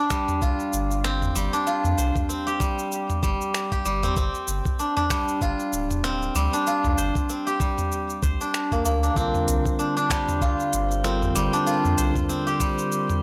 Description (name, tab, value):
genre	organic downtempo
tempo	96 BPM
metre	4/4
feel	swing 57% on 16ths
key	unclear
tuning	A4 = 437 Hz
part	steel-string zither	arpeggios	0.0-13.2 s	G3 to C5	-27 LUFS	equal	tape echo
part	afro-pop drum kit	drums	0.1-13.2 s	cabasa, finger snaps, hi-hat, toms	-32 LUFS	equal	none
part	electronic kick drum	drums	0.1-12.7 s	none	-28 LUFS	equal	none
part	warm sub bass	bass	0.4-12.1 s	D1 to F2	-28 LUFS	equal	transformer saturation, sidechain pumping
part	bell-like tine electric piano	accompaniment	9.1-13.2 s	D3 to Bb4	-31 LUFS	equal	sidechain pumping, tape echo
part	drifting glass-harmonics texture	texture	9.8-13.2 s	C4 to C5	-40 LUFS	equal	none
room	light reverb, digital ambience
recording	dry, gritty hardware recording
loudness	-24 LUFS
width	mono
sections	0.0-13.2 A section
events	none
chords	0.0 C5; 4.2 G5; 9.2 C5